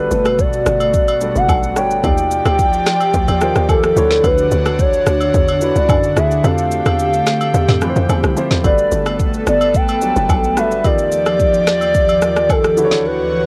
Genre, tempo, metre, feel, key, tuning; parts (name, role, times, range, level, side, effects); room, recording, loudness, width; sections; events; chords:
amapiano; 109 BPM; 4/4; straight; G lydian; A4 = 442 Hz
hollow clarinet-like synth lead; melody; 0.0-13.5 s; A4 to G5; -18 LUFS; equal; chorus
warm grand piano; accompaniment; 0.0-13.5 s; D3 to D5; -25 LUFS; equal; cassette tape
airy breathy pad; sustained chords; 0.0-13.5 s; D2 to D5; -23 LUFS; equal; chorus, sidechain pumping, cassette tape
tight log drum bass; bass; 0.0-10.8 s; F#1 to F#2; -22 LUFS; equal
afro-pop drum kit; drums; 0.1-13.0 s; kick drum, rim click, shaker, snare drum, toms; -21 LUFS; equal; cassette tape
agogo bells and woodblock; percussion; 0.3-12.6 s; -30 LUFS; equal
light reverb; home recording on cassette; -15 LUFS; mono
0.0-13.5 A section
kick muted 6.4-8.6
0.0 Gmaj9; 2.0 Ebmaj9; 4.0 Dmaj9; 6.4 Fmaj9; 8.6 Gmaj9; 10.8 Ebmaj9; 12.8 Dmaj9